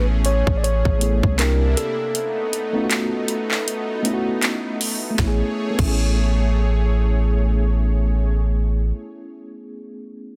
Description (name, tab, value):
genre	contemporary R&B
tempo	79 BPM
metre	4/4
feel	swing 58% on 16ths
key	A major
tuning	A4 = 440 Hz
part	mellow tine electric piano	melody	0.0-4.4 s	A4 to D5	-28 LUFS	equal	tape echo
part	mellow FM electric piano	accompaniment	0.0-10.4 s	A3 to G#4	-29 LUFS	equal	chorus, tremolo
part	lush unison pad	sustained chords	0.0-8.3 s	C3 to C#5	-32 LUFS	equal	chorus
part	long sustained 808-style bass	bass	0.0-8.9 s	A1 to C2	-21 LUFS	equal	none
part	trap drum kit	drums	0.2-6.0 s	crash cymbal, handclaps, hi-hat, kick drum, snare drum	-25 LUFS	equal	none
room	digital ambience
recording	dense, heavily limited modern master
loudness	-20 LUFS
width	mono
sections	0.0-5.2 A section; 5.2-8.2 B section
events	break 2.2-5.2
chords	0.0 Amaj7; 1.4 C9; 2.2 B7; 5.2 Amaj7